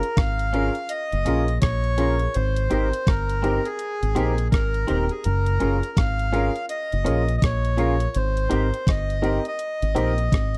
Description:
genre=lovers rock reggae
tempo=83 BPM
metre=4/4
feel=swing 60% on 16ths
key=Ab major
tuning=A4 = 440 Hz
part: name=accordion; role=melody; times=0.0-10.6 s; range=Ab4 to F5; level=-30 LUFS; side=equal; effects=tape echo
part: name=crisp 8-bit digital drum machine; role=drums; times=0.0-10.6 s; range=hi-hat, kick drum, rim click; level=-25 LUFS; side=equal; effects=none
part: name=deep dub fingered electric bass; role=bass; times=0.2-10.6 s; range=Eb1 to Bb1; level=-26 LUFS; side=equal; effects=none
part: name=warm grand piano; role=accompaniment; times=0.5-10.1 s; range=C4 to Bb4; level=-29 LUFS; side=equal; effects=slapback echo
part: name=twangy electric guitar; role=stabs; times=0.5-10.1 s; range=C4 to Bb4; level=-34 LUFS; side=equal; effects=analog chorus
room=digital ambience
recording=dry, close 1970s-style studio recording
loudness=-23 LUFS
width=mono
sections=0.0-10.6 A section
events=none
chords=0.0 Gbmaj7 (rootless); 2.3 Abmaj9; 5.2 Gbmaj7; 8.1 Abmaj9

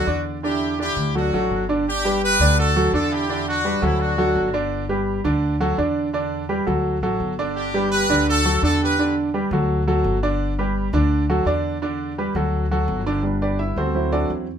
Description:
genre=latin, salsa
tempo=169 BPM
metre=4/4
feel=straight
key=G major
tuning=A4 = 441 Hz
part: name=brilliant horn section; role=melody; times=0.0-4.5, 7.6-9.1 s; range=C4 to B4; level=-22 LUFS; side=equal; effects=none
part: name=clear concert grand piano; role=accompaniment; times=0.0-14.5 s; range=D3 to E5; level=-21 LUFS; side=right 2 dB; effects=none
part: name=upright bass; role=bass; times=0.0-14.6 s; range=G1 to E2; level=-24 LUFS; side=left 1 dB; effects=none
room=moderate studio reverb, RT60 0.5 s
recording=minimal, uncompressed stereo recording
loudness=-19 LUFS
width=side -8 dB against mid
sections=0.0-1.9 A section; 1.9-13.2 B section; 13.2-14.6 C section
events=grand piano solo 13.2-14.6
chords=0.4 Em7; 1.1 D; 1.9 G; 2.6 D; 3.3 Em7; 4.0 D; 4.7 G; 5.4 D; 6.1 Em7; 6.8 D; 7.6 G; 8.3 D; 9.0 Em7; 9.7 D; 10.4 G; 11.1 D; 11.8 Em7; 12.5 D; 13.2 G; 13.9 D7

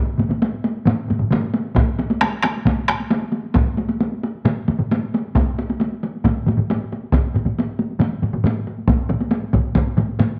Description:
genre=japanese traditional, taiko drum ensemble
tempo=135 BPM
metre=4/4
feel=straight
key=none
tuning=none
part: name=taiko ensemble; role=percussion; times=0.1-10.4 s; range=none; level=-24 LUFS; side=equal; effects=none
part: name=taiko ensemble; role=percussion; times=0.2-10.3 s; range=none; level=-26 LUFS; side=equal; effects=none
part: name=taiko ensemble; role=percussion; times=0.2-10.3 s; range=none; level=-26 LUFS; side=equal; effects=none
part: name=solo taiko drums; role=percussion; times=1.8-9.9 s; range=none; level=-25 LUFS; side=equal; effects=none
room=moderate echo chamber reverb, RT60 1.3 s, small room ambience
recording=none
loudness=-20 LUFS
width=mono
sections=0.0-10.4 A section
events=speeding up 0.0-10.4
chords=none

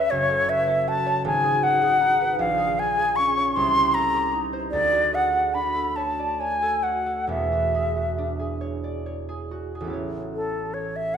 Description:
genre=classical, impressionist duo for flute and harp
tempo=43-53 BPM (dotted quarters)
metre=6/8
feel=rubato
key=A major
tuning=A4 = 441 Hz
part: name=concert flute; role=melody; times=0.0-11.2 s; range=A4 to Db6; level=-21 LUFS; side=left 1 dB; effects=none
part: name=concert harp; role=accompaniment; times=0.0-11.2 s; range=E1 to E5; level=-28 LUFS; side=right 2 dB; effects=none
room=wet scoring stage reverb, RT60 1.8 s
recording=minimal, uncompressed stereo recording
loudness=-21 LUFS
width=side -8 dB against mid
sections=0.0-10.0 A section; 10.0-11.2 B section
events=none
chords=0.1 F#m7; 1.3 G#m7; 2.4 Bbm7; 3.6 Cm7; 4.7 Dmaj7; 7.3 E13; 10.0 Aadd9

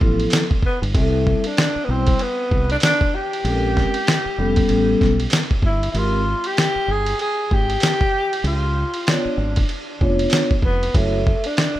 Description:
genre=hip hop, jazz-hop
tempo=96 BPM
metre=4/4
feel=swing 60% on 16ths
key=unclear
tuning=A4 = 440 Hz
part: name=vibraphone with soft mallets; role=accompaniment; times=0.0-11.2 s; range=F3 to C#5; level=-22 LUFS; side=left 1 dB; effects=none
part: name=deep dub fingered electric bass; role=bass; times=0.0-11.8 s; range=E#1 to C#2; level=-22 LUFS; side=equal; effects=none
part: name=dusty soul sampler-style drum kit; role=drums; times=0.0-11.8 s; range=hi-hat, kick drum, ride cymbal, snare drum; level=-20 LUFS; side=equal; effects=none
part: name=breathy tenor saxophone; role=melody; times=0.7-11.8 s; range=A3 to G#4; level=-23 LUFS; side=equal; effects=tape echo
room=little or no reverb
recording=rough home demo mix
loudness=-17 LUFS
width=side -14 dB against mid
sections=0.0-11.8 A section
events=break 5.9-7.2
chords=0.0 G13 (rootless); 0.9 C6; 3.4 A#m9; 4.7 A9; 5.9 G#maj7(no3); 8.4 C#7b9; 10.9 F#m7

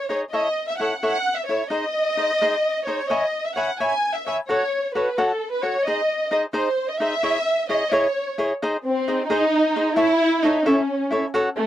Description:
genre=mexican folk, mariachi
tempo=87 BPM (dotted quarters)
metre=6/8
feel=straight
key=unclear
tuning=A4 = 440 Hz
part: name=dark symphonic violin section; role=melody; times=0.0-11.7 s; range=A3 to G#5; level=-21 LUFS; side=equal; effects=none
part: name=cavaquinho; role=accompaniment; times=0.1-11.5 s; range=D#4 to B5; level=-22 LUFS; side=left 1 dB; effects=none
room=little or no reverb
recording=dry, close 1970s-style studio recording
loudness=-20 LUFS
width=side -12 dB against mid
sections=0.0-8.6 A section; 8.6-11.7 B section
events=none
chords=0.3 A; 1.7 G#; 3.1 C#m7; 4.5 F#m; 5.8 G#; 7.2 C#madd9; 8.6 G#; 10.0 A

